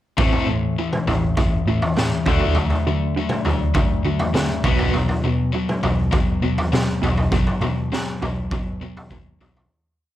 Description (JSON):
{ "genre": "quiet-loud alternative rock", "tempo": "101 BPM", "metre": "4/4", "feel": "straight", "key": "unclear", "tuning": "A4 = 440 Hz", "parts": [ { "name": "electric guitar through a small old amp", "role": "arpeggios", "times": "0.2-9.7 s", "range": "A2 to C4", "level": "-28 LUFS", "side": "right 4 dB", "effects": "tremolo" }, { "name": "high-gain distorted guitar", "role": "riff", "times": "0.2-9.7 s", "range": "A2 to D4", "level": "-24 LUFS", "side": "left 6 dB", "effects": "distortion" }, { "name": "hollow-body short-scale picked electric bass", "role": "bass", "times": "0.2-9.7 s", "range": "A1 to D3", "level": "-24 LUFS", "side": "equal", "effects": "none" }, { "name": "raw garage drum kit", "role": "drums", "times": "0.2-9.7 s", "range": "kick drum, snare drum, toms", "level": "-21 LUFS", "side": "equal", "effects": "none" } ], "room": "small room ambience", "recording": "none", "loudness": "-18 LUFS", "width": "side -13 dB against mid", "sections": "0.2-9.7 verse", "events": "fade-out 7.3-9.7", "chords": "0.2 Am; 2.3 D; 4.6 B5", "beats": "| 0.18 0.78 1.38 1.97 | 2.57 3.16 3.76 4.35 | 4.95 5.54 6.14 6.73 | 7.33 7.92 8.52 9.11" }